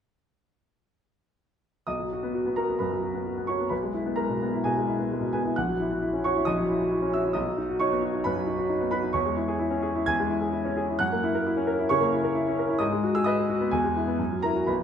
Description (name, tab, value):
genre	classical, virtuoso piano study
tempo	132 BPM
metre	4/4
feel	rubato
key	B major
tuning	A4 = 439 Hz
part	clear concert grand piano	solo	1.9-14.8 s	A#1 to G#6	-24 LUFS	equal	none
room	wet recital hall reverb, RT60 1.3 s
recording	minimal, uncompressed stereo recording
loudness	-24 LUFS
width	side -8 dB against mid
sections	1.9-14.8 A section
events	none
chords	1.9 B; 3.7 E/B; 5.6 F#7/A#; 7.4 B; 9.1 C#m/E; 11.0 F#7; 12.8 G#m7; 13.7 E; 14.2 F#7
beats	| 1.88 2.34 2.80 3.26 | 3.72 4.17 4.63 5.09 | 5.56 6.02 6.47 6.93 | 7.37 7.82 8.26 8.70 | 9.15 9.60 10.08 10.53 | 10.98 11.44 11.89 12.35 | 12.81 13.26 13.72 14.19 | 14.68